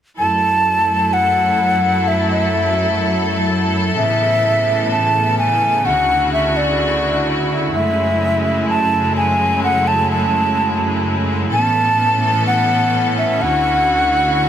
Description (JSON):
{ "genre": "EDM", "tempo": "127 BPM", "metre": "4/4", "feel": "straight", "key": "F# minor", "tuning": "A4 = 439 Hz", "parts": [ { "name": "mellow hollow silver concert flute", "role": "melody", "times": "0.2-14.5 s", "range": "D5 to A5", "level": "-16 LUFS", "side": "equal", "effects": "tape echo" }, { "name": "clear studio string section", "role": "sustained chords", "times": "0.2-14.5 s", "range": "D2 to A4", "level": "-17 LUFS", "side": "equal", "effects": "none" }, { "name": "swell", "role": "sound effects", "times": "14.5 s", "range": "none", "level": "-31 LUFS", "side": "right 2 dB", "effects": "none" } ], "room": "moderate huge ambient reverb, RT60 7.7 s", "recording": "dense, heavily limited modern master", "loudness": "-14 LUFS", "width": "side -9 dB against mid", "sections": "0.2-14.5 A section", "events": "none", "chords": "0.2 F#m7; 4.0 Aadd9; 5.9 Dmaj7; 7.7 F#m7; 11.5 Aadd9; 13.4 Dmaj7", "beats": "| 0.19 0.66 1.13 1.61 | 2.08 2.55 3.02 3.50 | 3.97 4.44 4.91 5.39 | 5.86 6.33 6.80 7.28 | 7.75 8.22 8.69 9.16 | 9.64 10.11 10.58 11.05 | 11.53 12.00 12.47 12.95 | 13.42 13.89 14.36" }